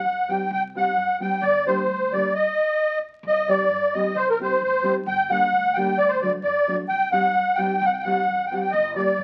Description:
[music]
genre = balkan folk, Balkan wedding band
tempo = 132 BPM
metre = 2/4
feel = straight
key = C dorian sharp4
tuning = A4 = 436 Hz
[part]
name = musette accordion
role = melody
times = 0.0-9.2 s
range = Bb4 to G5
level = -22 LUFS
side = equal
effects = none
[part]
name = upright bass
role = bass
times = 0.0-9.2 s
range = G1 to G2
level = -46 LUFS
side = equal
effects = none
[part]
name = nylon-string guitar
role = accompaniment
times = 0.3-9.1 s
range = F#3 to G4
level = -31 LUFS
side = equal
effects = none
[sound]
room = wet studio reverb, RT60 0.6 s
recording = very old 78 rpm record, vinyl crackle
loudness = -22 LUFS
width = mono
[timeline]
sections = 0.0-3.2 A section; 3.2-9.2 A section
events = none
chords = 0.0 Cm; 1.4 Gm; 2.3 N.C.; 3.2 Cm; 5.1 Gm; 6.0 D; 6.9 Cm; 8.7 Gm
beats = 0.05 | 0.51 0.96 | 1.42 1.88 | 2.33 2.79 | 3.25 3.70 | 4.16 4.62 | 5.07 5.53 | 5.98 6.44 | 6.89 7.35 | 7.80 8.26 | 8.72 9.17

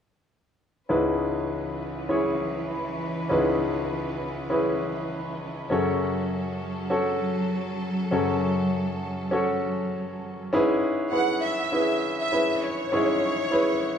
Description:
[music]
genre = pop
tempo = 100 BPM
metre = 4/4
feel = swing 56% on 16ths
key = C# minor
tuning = A4 = 440 Hz
[part]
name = bright concert grand piano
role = accompaniment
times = 0.9-14.0 s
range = C#2 to C#5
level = -25 LUFS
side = left 1 dB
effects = none
[part]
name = clear studio string section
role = sustained chords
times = 0.9-10.5 s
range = E3 to B4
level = -31 LUFS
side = right 1 dB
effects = none
[part]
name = rich studio violin section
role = melody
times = 11.1-14.0 s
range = C#5 to F#5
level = -26 LUFS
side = equal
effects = none
[sound]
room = wet large studio reverb, RT60 1.3 s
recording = band playing live in one room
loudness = -23 LUFS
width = side -8 dB against mid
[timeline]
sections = 0.9-10.5 A section; 10.5-14.0 B section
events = none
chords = 0.9 C#m7; 5.7 F#m; 10.5 C#m7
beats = | 0.90 1.50 2.10 2.70 | 3.30 3.90 4.51 5.11 | 5.71 6.31 6.91 7.51 | 8.11 8.71 9.31 9.92 | 10.52 11.12 11.72 12.32 | 12.92 13.52

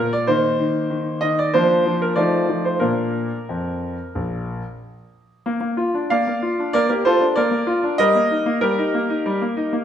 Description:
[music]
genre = classical-period piano sonatina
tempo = 95 BPM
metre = 4/4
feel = rubato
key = Bb major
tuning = A4 = 440 Hz
[part]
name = clear concert grand piano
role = solo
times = 0.0-9.8 s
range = Bb1 to F5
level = -18 LUFS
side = equal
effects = none
[sound]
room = wet recital hall reverb, RT60 1.4 s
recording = none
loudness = -18 LUFS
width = side -9 dB against mid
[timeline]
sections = 0.0-5.5 A section; 5.5-9.8 B section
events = none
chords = 0.3 Cm7/Eb; 1.5 Bb/F; 2.2 F7; 2.8 Bb; 8.0 Eb/G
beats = | 0.28 0.91 1.54 2.17 | 2.82 3.48 4.15 4.80 | 5.46 6.10 6.74 7.36 | 7.99 8.62 9.24

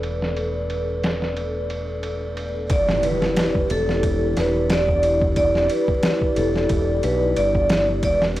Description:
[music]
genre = trip hop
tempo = 90 BPM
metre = 4/4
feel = swing 55% on 16ths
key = E minor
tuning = A4 = 436 Hz
[part]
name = dark analog pad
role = sustained chords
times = 0.0-8.4 s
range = D4 to D5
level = -25 LUFS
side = left 1 dB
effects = chorus
[part]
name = modern bright fingered electric bass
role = bass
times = 0.0-8.4 s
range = E1 to B1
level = -25 LUFS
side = equal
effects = tube saturation
[part]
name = trip hop sampler-style drum kit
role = drums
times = 0.0-8.4 s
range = kick drum, ride cymbal, snare drum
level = -25 LUFS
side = equal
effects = overdrive, low-pass filter on cymbals, low-pass filter on snare, low-pass filter on kick
[part]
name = vibraphone with hard mallets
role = melody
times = 2.7-8.2 s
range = A4 to D5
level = -21 LUFS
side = right 1 dB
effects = none
[part]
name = impact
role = sound effects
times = 2.7-5.4 s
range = none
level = -28 LUFS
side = equal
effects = none
[sound]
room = digital ambience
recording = dry, gritty hardware recording, transformer saturation, vinyl crackle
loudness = -18 LUFS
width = side -15 dB against mid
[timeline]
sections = 0.0-2.7 A section; 2.7-8.4 B section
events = impact 2.7-5.4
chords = 0.0 Bm7/E; 2.7 Em7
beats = | 0.03 0.70 1.36 2.03 | 2.70 3.37 4.03 4.70 | 5.37 6.03 6.70 7.37 | 8.03

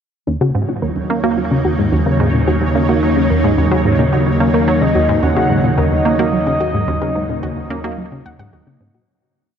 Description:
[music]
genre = ambient, sequencer-driven space music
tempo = 109 BPM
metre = 4/4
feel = straight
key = Eb minor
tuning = A4 = 440 Hz
[part]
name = evolving wavetable pad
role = sustained chords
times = 0.7-9.0 s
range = Db3 to Eb4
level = -19 LUFS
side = equal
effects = ensemble chorus, built-in reverb, phaser
[part]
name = soft round pluck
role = arpeggios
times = 0.3-9.0 s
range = Db4 to Gb5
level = -24 LUFS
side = left 1 dB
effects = chorus, auto-pan, analog delay
[part]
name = tight sequenced synth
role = riff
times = 0.3-9.0 s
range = Eb2 to Bb3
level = -18 LUFS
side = right 1 dB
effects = chorus, analog delay
[part]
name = analog drone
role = bass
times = 1.2-9.1 s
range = Eb2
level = -21 LUFS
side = equal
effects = chorus
[part]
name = pulsing gated texture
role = texture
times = 0.7-9.1 s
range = Db5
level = -27 LUFS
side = right 4 dB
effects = chorus, built-in reverb
[part]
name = pulse-width lead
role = melody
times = 4.7-8.5 s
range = Db5 to Gb5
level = -20 LUFS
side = equal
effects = chorus, analog delay
[sound]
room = wet huge ambient reverb, RT60 8.3 s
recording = in a vast, echoing space, nothing above 8.0 kHz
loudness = -13 LUFS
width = side -8 dB against mid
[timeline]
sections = 0.3-9.1 A section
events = fade-out 6.1-9.1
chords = 0.3 Ebm7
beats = | 0.27 0.82 1.38 1.93 | 2.48 3.03 3.58 4.13 | 4.68 5.23 5.78 6.33 | 6.88 7.43 7.98 8.53

